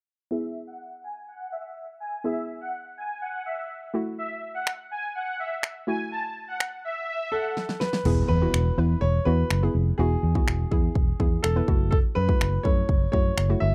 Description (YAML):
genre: dance-pop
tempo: 124 BPM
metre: 4/4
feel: straight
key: E major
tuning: A4 = 440 Hz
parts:
  - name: filtered supersaw swell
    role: melody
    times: 0.3-7.4 s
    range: E5 to A5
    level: -35 LUFS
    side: equal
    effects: sidechain pumping, low-pass filter, tape echo
  - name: hollow square pluck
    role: accompaniment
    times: 0.3-13.7 s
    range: A3 to B4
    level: -33 LUFS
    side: equal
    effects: chorus, sidechain pumping, low-pass filter
  - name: pop drum kit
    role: drums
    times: 4.7-13.5 s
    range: crash cymbal, finger snaps, kick drum, snare drum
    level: -26 LUFS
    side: equal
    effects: none
  - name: warm concert grand piano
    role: melody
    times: 7.3-13.7 s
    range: G#4 to E5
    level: -32 LUFS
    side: equal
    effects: none
  - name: vintage muted fingered electric bass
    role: bass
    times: 8.1-13.7 s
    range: E1 to F#2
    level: -26 LUFS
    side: equal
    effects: sidechain pumping
  - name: impact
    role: sound effects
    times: 8.1-10.0 s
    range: none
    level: -36 LUFS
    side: equal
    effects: none
room: little or no reverb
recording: dry, close 1970s-style studio recording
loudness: -26 LUFS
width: mono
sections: 0.3-8.1 A section; 8.1-13.7 B section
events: filter sweep 0.3-8.1; drum fill 7.6-8.1; impact 8.1-10.0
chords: 0.3 E; 3.9 F#m7; 8.1 E; 11.7 F#m7